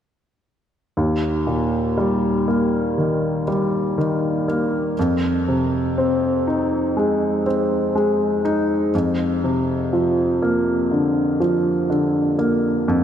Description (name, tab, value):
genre	pop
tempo	60 BPM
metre	4/4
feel	straight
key	Eb major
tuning	A4 = 440 Hz
part	clear grand piano	accompaniment	1.0-13.0 s	Eb2 to Eb4	-18 LUFS	equal	none
room	wet huge ambient reverb, RT60 4.9 s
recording	dreamy mix soaked in reverb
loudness	-18 LUFS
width	side -9 dB against mid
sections	1.0-13.0 A section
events	none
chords	1.0 Eb; 5.0 Fm7; 8.9 Bbadd9/F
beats	| 0.97 1.97 2.98 3.97 | 4.97 5.97 6.96 7.94 | 8.94 9.92 10.91 11.90 | 12.89